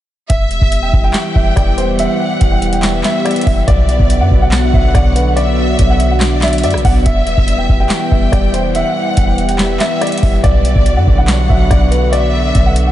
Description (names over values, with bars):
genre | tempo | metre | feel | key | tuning
hip hop, trap | 142 BPM | 4/4 | half-time | E minor | A4 = 440 Hz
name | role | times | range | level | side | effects
dark baby grand piano | melody | 0.3-12.9 s | B4 to G5 | -19 LUFS | equal | none
warm studio violin section | second line | 0.3-12.9 s | D5 to G5 | -21 LUFS | left 1 dB | analog delay
dark analog pad | sustained chords | 0.5-12.9 s | D3 to G4 | -18 LUFS | equal | chorus
clean 808-style bass | bass | 0.3-12.9 s | E1 to F#2 | -14 LUFS | equal | none
booming analog drum machine | drums | 0.3-12.9 s | handclaps, hi-hat, kick drum, rim click, snare drum | -15 LUFS | equal | none
room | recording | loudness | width
moderate huge ambient reverb, RT60 9.1 s | dreamy mix soaked in reverb, nothing above 10.7 kHz | -10 LUFS | side -13 dB against mid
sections
0.3-12.9 A section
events
none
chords
0.3 Em; 3.7 Bm; 7.1 Em; 10.4 Bm